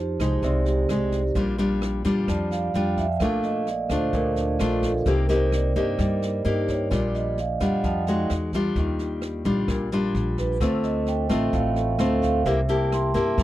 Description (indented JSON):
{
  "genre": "bossa nova",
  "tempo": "130 BPM",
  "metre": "4/4",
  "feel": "straight",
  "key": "Bb major",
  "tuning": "A4 = 442 Hz",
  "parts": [
    { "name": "nylon-string guitar", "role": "accompaniment", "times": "0.0-13.4 s", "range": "A2 to G4", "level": "-25 LUFS", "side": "left 2 dB", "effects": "none" },
    { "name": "vibraphone with soft mallets", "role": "accompaniment", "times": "0.0-13.4 s", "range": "D4 to C6", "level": "-27 LUFS", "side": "right 5 dB", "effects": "none" },
    { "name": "upright bass", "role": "bass", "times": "0.0-13.4 s", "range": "A1 to G2", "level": "-27 LUFS", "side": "equal", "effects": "none" },
    { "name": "jazz brush drum kit", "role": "drums", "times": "0.2-13.4 s", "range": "kick drum, rim click, snare drum", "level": "-32 LUFS", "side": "equal", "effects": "none" }
  ],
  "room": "little or no reverb",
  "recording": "dry, close 1970s-style studio recording",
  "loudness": "-21 LUFS",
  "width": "side -14 dB against mid",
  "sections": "0.0-13.4 A section",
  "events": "vibraphone solo 0.0-13.4",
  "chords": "0.0 Fm9; 1.4 Bb6; 3.2 Bbmaj9; 5.1 Cm7; 6.9 Bb6; 8.3 Emaj9; 8.8 Ebmaj9; 10.6 Dm7; 12.5 C7",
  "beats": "0.43 0.90 | 1.36 1.82 2.29 2.75 | 3.21 3.68 4.14 4.60 | 5.07 5.53 5.99 6.45 | 6.92 7.38 7.84 8.30 | 8.77 9.23 9.69 10.15 | 10.61 11.07 11.54 12.00 | 12.46 12.92 13.38"
}